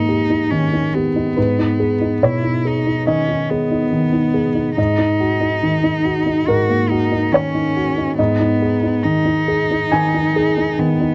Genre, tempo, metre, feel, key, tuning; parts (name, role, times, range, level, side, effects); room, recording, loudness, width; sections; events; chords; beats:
neoclassical piano and strings; 70 BPM; 4/4; rubato; G# minor; A4 = 443 Hz
rich cello; second line; 0.0-11.1 s; B3 to F#4; -23 LUFS; equal
dark upright piano; accompaniment; 0.0-11.1 s; G#2 to G#5; -19 LUFS; equal
light reverb; cassette tape; -17 LUFS; mono
0.0-11.1 A section
0.0 D#/G#; 1.4 G#m; 4.8 D#m/G#; 8.2 G#m
0.51 | 1.37 2.23 3.08 3.92 | 4.77 5.63 6.48 7.33 | 8.18 9.03 9.92 10.78